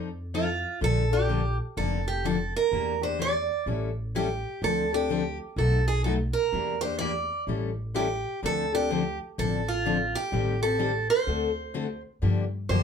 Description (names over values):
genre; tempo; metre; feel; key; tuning
acoustic string swing (jazz manouche); 126 BPM; 4/4; swing 63% on 8ths; D minor; A4 = 440 Hz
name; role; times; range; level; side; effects
picked steel-string acoustic guitar; accompaniment; 0.0-12.8 s; B2 to A4; -29 LUFS; left 7 dB; none
upright bass; bass; 0.0-12.8 s; F1 to G2; -30 LUFS; equal; none
picked steel-string acoustic guitar; melody; 0.3-12.8 s; F4 to D5; -28 LUFS; right 5 dB; none
room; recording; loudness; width
moderate studio ambience, RT60 0.5 s; band playing live in one room; -25 LUFS; side -7 dB against mid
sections
0.0-12.2 A section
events
none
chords
0.0 F7; 0.8 Bbmaj7; 2.7 Em7b5; 3.7 A7; 4.6 Dm7; 5.6 B7; 6.5 Em7b5; 7.5 A7; 8.4 Dm7; 10.3 Am7b5; 11.3 D7; 12.2 Gm7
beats
0.34 | 0.81 1.29 1.77 2.24 | 2.72 3.19 3.67 4.14 | 4.62 5.10 5.57 6.05 | 6.52 7.00 7.47 7.95 | 8.42 8.90 9.37 9.85 | 10.32 10.79 11.27 11.74 | 12.21 12.69